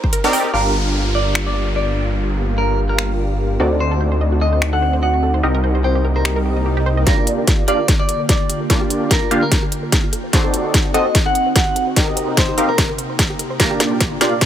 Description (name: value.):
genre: future bass.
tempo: 147 BPM.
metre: 4/4.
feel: swing 55% on 16ths, half-time.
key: G minor.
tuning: A4 = 440 Hz.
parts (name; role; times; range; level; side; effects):
wide unison pluck; arpeggios; 0.0-0.5, 3.8-14.5 s; F4 to G5; -29 LUFS; right 3 dB; sidechain pumping, dub echo.
electronic kick drum; drums; 0.0-0.1, 7.1-14.5 s; none; -17 LUFS; equal; overdrive.
trap drum kit; drums; 0.1-14.5 s; finger snaps, hi-hat, snare drum; -20 LUFS; equal; high-pass filter on snare, high-pass filter on hats, high-pass filter on cymbals.
supersaw stab; riff; 0.2-14.3 s; Bb3 to F5; -21 LUFS; equal; phaser, sidechain pumping, low-pass filter.
clean electric guitar; melody; 0.5-14.4 s; Bb4 to F#5; -23 LUFS; equal; phaser, sidechain pumping, dub echo.
ethereal airy pad; sustained chords; 1.2-14.5 s; Bb2 to G4; -27 LUFS; right 1 dB; ensemble chorus, built-in reverb, sidechain pumping.
wide detuned saw bass; bass; 0.5-7.0 s; G1 to D2; -18 LUFS; equal; chorus, sidechain pumping.
downlifter, swell and riser; sound effects; 0.5-3.8, 6.5-7.1, 13.6-14.5 s; none; -29 LUFS; equal; none.
room: little or no reverb.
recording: high-pass filter.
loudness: -15 LUFS.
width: side -10 dB against mid.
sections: 0.5-7.1 A section; 7.1-14.5 B section.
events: kick drops out 0.1-0.5; filter sweep on ambient pad 0.5-7.1; swell 6.5-7.1; build-up 7.1-14.5; drum fill 7.1-14.5; filter sweep 7.1-14.5.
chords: 0.0 Cm7; 0.5 Gm7; 3.6 D7b9; 5.4 Cm7; 7.1 Gm7; 10.1 D7b9; 12.0 Cm7; 13.6 Gm7.